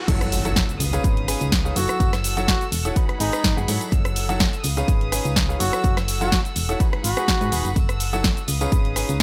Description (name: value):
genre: piano house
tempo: 125 BPM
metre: 4/4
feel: swing 54% on 16ths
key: F# dorian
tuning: A4 = 440 Hz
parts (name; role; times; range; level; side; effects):
- warm studio violin section; sustained chords; 0.0-9.2 s; G#4 to E6; -35 LUFS; equal; sidechain pumping
- clear upright piano; riff; 0.0-9.2 s; C#3 to B5; -31 LUFS; equal; sidechain pumping, tape echo
- riser and impact; sound effects; 0.0-2.0 s; none; -33 LUFS; equal; none
- solid FM bass; bass; 0.1-9.2 s; D#1 to G#2; -28 LUFS; equal; sidechain pumping
- electronic kick drum; drums; 0.1-9.2 s; none; -24 LUFS; equal; studio reverb
- house drum kit; drums; 0.1-9.2 s; crash cymbal, hi-hat, rim click, shaker, snare drum; -27 LUFS; equal; studio reverb
- tambourine; percussion; 0.1-9.2 s; none; -37 LUFS; equal; none
- trumpet with bucket mute; melody; 1.8-7.7 s; D#4 to F#4; -30 LUFS; equal; tape echo
room: studio reverb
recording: dry, gritty hardware recording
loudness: -21 LUFS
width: mono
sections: 0.1-9.2 A section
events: drop 0.1-9.2; impact 0.1-2.0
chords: 0.1 F#m7; 0.8 C#9; 1.8 F#m7; 3.0 G#m7; 3.9 F#m7; 4.6 C#9; 5.6 F#m7; 6.8 G#m7; 7.8 F#m7; 8.5 C#9